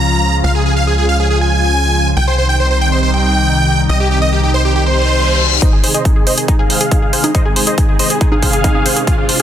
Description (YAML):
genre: uplifting trance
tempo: 139 BPM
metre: 4/4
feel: straight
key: unclear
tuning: A4 = 440 Hz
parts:
  - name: big supersaw lead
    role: melody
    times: 0.0-9.4 s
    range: F4 to Bb5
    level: -16 LUFS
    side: right 1 dB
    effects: cassette tape, sidechain pumping, low-pass filter, dub echo
  - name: lush unison pad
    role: sustained chords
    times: 0.0-9.4 s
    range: C3 to F4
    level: -18 LUFS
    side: equal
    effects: chorus, phaser, sidechain pumping
  - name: tight sequencer bass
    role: bass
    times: 0.0-5.6 s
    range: C2 to Db2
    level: -15 LUFS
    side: equal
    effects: sidechain pumping
  - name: reverse cymbal and riser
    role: sound effects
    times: 5.0-9.4 s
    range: none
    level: -22 LUFS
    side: left 4 dB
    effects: none
  - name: wide unison pluck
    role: arpeggios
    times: 5.6-9.4 s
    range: Eb4 to C5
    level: -20 LUFS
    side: left 2 dB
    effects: sidechain pumping, tape echo
  - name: electronic hi-hat and congas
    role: drums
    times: 5.6-9.4 s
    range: none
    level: -17 LUFS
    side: right 1 dB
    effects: overdrive
  - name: electronic kick drum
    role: drums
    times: 5.6-9.2 s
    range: none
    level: -13 LUFS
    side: equal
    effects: none
room: light reverb, digital ambience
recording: dense, heavily limited modern master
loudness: -11 LUFS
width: side -10 dB against mid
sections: 0.0-5.6 A section; 5.6-9.4 B section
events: reverse cymbal 5.0-5.6; build-up 5.6-9.4; filter sweep on supersaw synth 5.6-9.4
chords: 0.0 Db; 2.2 Cm; 5.6 Ab